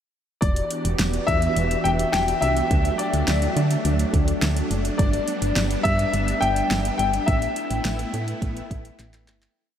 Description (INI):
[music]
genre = synth-pop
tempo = 105 BPM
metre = 4/4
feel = straight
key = E minor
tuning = A4 = 440 Hz
[part]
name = warm grand piano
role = melody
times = 0.4-9.2 s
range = D5 to G5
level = -25 LUFS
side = left 2 dB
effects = analog chorus, diffuse ambient delay
[part]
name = string machine, violas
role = sustained chords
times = 0.4-9.5 s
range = E3 to G4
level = -27 LUFS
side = equal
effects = ensemble chorus
[part]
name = solid FM bass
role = bass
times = 0.4-9.5 s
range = E1 to D3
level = -24 LUFS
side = equal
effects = none
[part]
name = deep house drum kit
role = drums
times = 0.4-9.6 s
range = handclaps, hi-hat, kick drum, snare drum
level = -26 LUFS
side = equal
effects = none
[sound]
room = wet huge ambient reverb, RT60 8.0 s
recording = dreamy mix soaked in reverb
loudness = -20 LUFS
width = side -9 dB against mid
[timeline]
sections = 0.4-9.6 verse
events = fade-out 7.3-9.6; drum fill 9.0-9.6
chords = 0.4 Em7; 2.7 D; 5.0 G; 7.3 Asus2